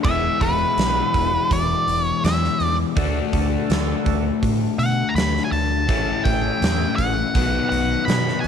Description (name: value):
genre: blues rock power trio and southern rock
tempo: 82 BPM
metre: 4/4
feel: straight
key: E mixolydian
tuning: A4 = 440 Hz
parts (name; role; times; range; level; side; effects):
- octave-fuzz lead guitar; melody; 0.0-8.5 s; B4 to B5; -22 LUFS; right 1 dB; distortion
- overdriven tonewheel organ; sustained chords; 0.0-8.5 s; G#3 to B4; -31 LUFS; right 11 dB; slow rotary speaker
- crunchy overdriven guitar; riff; 0.0-8.5 s; A2 to F#4; -23 LUFS; left 10 dB; none
- fingered electric bass; bass; 0.0-8.5 s; E1 to B2; -25 LUFS; right 2 dB; none
- huge arena drum kit; drums; 0.0-8.5 s; hi-hat, kick drum, snare drum; -24 LUFS; right 2 dB; none
room: light reverb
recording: 1960s-style stereo with parts hard left and right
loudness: -18 LUFS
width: side -8 dB against mid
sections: 0.0-8.5 A section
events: none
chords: 0.0 E; 3.0 D; 5.9 A; 7.3 B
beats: | 0.05 0.78 1.51 2.24 | 2.97 3.70 4.43 5.16 | 5.89 6.62 7.35 8.08